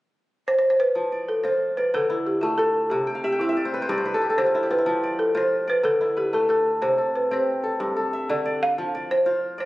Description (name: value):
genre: west african traditional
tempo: 123 BPM (dotted quarters)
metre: 12/8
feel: straight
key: F lydian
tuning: A4 = 445 Hz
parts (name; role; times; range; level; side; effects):
- balafon; melody; 0.5-9.7 s; E4 to F5; -22 LUFS; equal; none
- kora; arpeggios; 1.0-9.7 s; G2 to G5; -25 LUFS; left 1 dB; none
room: wet recital hall reverb, RT60 1.4 s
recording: recorded on a phone in the room, club reverb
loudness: -20 LUFS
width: side -18 dB against mid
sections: 1.0-9.7 A section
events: kora fill 3.1-4.9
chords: 0.0 N.C.; 1.0 F5; 1.9 D5; 2.9 C; 3.9 G5; 4.9 F5; 5.8 D5; 6.8 C5; 7.8 G5; 8.8 F5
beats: 0.47 | 0.96 1.45 1.94 2.42 | 2.91 3.40 3.89 4.38 | 4.87 5.36 5.84 6.33 | 6.82 7.31 7.80 8.29 | 8.77 9.26